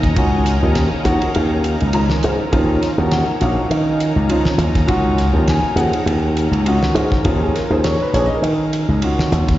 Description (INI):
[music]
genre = electric jazz fusion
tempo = 102 BPM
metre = 4/4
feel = swing 55% on 16ths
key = Eb minor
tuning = A4 = 440 Hz
[part]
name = warm concert grand piano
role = accompaniment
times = 0.0-9.6 s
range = F3 to Bb5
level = -20 LUFS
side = equal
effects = slapback echo
[part]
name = soft additive organ-like pad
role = sustained chords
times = 0.0-9.6 s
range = Eb3 to Bb4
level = -25 LUFS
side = equal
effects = ensemble chorus, built-in reverb
[part]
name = slap bass with an envelope filter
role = bass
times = 0.0-9.6 s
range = Bb1 to Eb3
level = -16 LUFS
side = equal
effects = none
[part]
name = damped 70s drum kit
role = drums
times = 0.0-9.6 s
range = hi-hat, kick drum, ride cymbal, snare drum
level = -23 LUFS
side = equal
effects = none
[sound]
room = light reverb, small room ambience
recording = live gig heard through the venue's PA, recital hall reverb, nothing above 7.7 kHz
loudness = -14 LUFS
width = side -14 dB against mid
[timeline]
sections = 0.0-9.6 A section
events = none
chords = 0.0 Ebm9